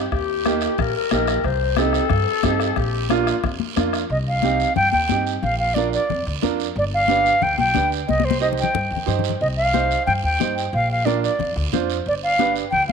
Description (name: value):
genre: latin, cumbia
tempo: 181 BPM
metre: 4/4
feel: straight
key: C dorian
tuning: A4 = 440 Hz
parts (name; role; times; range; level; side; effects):
- growling clarinet; second line; 0.0-4.1 s; F4 to C5; -23 LUFS; left 8 dB; none
- upright bass; bass; 0.0-12.9 s; G1 to G2; -25 LUFS; equal; none
- bombo; percussion; 0.1-4.1 s; none; -28 LUFS; left 2 dB; none
- guiro; percussion; 0.1-12.9 s; none; -33 LUFS; right 16 dB; none
- warm upright piano; accompaniment; 0.5-12.6 s; Bb3 to C5; -25 LUFS; right 11 dB; none
- congas; percussion; 0.5-12.9 s; none; -27 LUFS; left 15 dB; none
- concert flute; melody; 4.1-12.9 s; C5 to G5; -20 LUFS; equal; none
room: wet spring reverb, RT60 1.9 s, small room reverb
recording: 1960s-style stereo with parts hard left and right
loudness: -18 LUFS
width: side -6 dB against mid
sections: 0.0-4.1 A section; 4.1-12.9 B section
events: drum fill 8.1-9.4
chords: 0.1 Eb; 1.4 Cm; 2.8 Bb; 4.1 Cm; 5.4 Bb; 6.8 G7; 8.1 Cm; 10.7 Bb; 12.1 G7